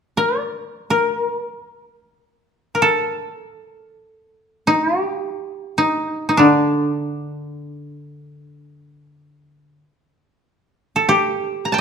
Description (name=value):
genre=japanese traditional, Japanese chamber music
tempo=free time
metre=none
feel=none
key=G hirajoshi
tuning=A4 = 440 Hz
part: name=koto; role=melody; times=0.2-11.8 s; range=D4 to Bb5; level=-17 LUFS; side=equal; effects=none
part: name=koto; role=accompaniment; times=6.4-9.8 s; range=D3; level=-19 LUFS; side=left 2 dB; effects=none
room=moderate recital hall reverb, RT60 1.5 s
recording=none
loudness=-17 LUFS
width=side -6 dB against mid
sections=0.0-11.8 A section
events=none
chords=none